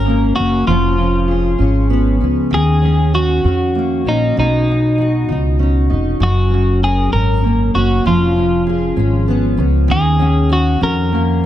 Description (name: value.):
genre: pop.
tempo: 65 BPM (dotted quarters).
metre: 6/8.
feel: straight.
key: F# major.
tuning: A4 = 437 Hz.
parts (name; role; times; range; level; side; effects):
twelve-string electric guitar; melody; 0.0-11.5 s; D#4 to A#4; -19 LUFS; left 1 dB; analog delay.
fingerpicked steel-string acoustic guitar; accompaniment; 0.0-11.5 s; F#2 to A#4; -17 LUFS; equal; double-tracked left and right, analog delay.
upright bass; bass; 0.0-11.5 s; E#1 to E#2; -16 LUFS; equal; none.
room: moderate spring reverb, RT60 1.1 s, studio ambience.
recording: echo-heavy mix.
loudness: -12 LUFS.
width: side -12 dB against mid.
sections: 0.0-11.5 A section.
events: none.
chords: 0.0 F#; 0.7 C#7/E#; 2.5 D#m7; 4.4 Badd9; 6.2 F#; 8.1 C#7/E#; 9.9 D#m7.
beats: | 0.67 1.60 | 2.52 3.44 | 4.36 5.29 | 6.21 7.13 | 8.06 8.98 | 9.90 10.83.